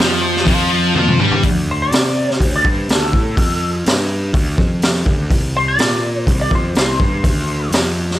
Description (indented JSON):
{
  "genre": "blues rock power trio and southern rock",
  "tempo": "124 BPM",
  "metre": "4/4",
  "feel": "straight",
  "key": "D minor",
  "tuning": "A4 = 442 Hz",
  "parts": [
    { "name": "overdriven tonewheel organ", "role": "sustained chords", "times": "0.0-0.5 s", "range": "C4 to C5", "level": "-28 LUFS", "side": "right 3 dB", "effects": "none" },
    { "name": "thick fuzz guitar", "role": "riff", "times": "0.0-1.4 s", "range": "F3 to G3", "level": "-15 LUFS", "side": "left 1 dB", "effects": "distortion" },
    { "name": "fuzz picked electric bass", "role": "bass", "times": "0.0-8.2 s", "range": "C2 to C3", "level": "-20 LUFS", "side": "equal", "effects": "overdrive" },
    { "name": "raw garage drum kit", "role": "drums", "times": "0.0-8.2 s", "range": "hi-hat, kick drum, snare drum, toms", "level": "-16 LUFS", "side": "equal", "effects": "none" },
    { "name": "lightly driven lead guitar", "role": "melody", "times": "1.7-7.7 s", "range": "A4 to D5", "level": "-20 LUFS", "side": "left 1 dB", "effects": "wah" }
  ],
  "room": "light reverb, studio ambience",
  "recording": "none",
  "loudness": "-13 LUFS",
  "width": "side -14 dB against mid",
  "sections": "0.0-1.4 A section; 1.4-8.2 B section",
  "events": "drum fill 1.0-1.4; lead electric guitar solo 1.4-8.2",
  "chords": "0.0 C5; 1.4 Dm; 5.3 C5",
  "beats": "0.47 0.95 | 1.44 1.92 2.41 2.89 | 3.37 3.86 4.34 4.83 | 5.31 5.80 6.28 6.77 | 7.25 7.74"
}